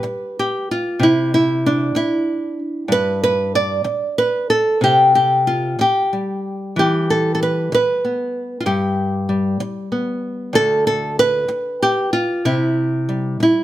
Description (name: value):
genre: folk, solo fingerstyle acoustic guitar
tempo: 63 BPM (dotted quarters)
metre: 6/8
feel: rubato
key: unclear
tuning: A4 = 440 Hz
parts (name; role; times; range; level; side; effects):
- nylon-string guitar; solo; 0.0-13.6 s; D2 to D5; -16 LUFS; equal; none
room: light reverb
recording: close, detailed microphones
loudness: -16 LUFS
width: side -13 dB against mid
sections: 0.0-13.6 A section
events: none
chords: 0.0 G; 1.0 N.C.; 2.9 G; 4.8 C5; 6.8 Em; 8.7 G; 10.5 D5; 12.4 C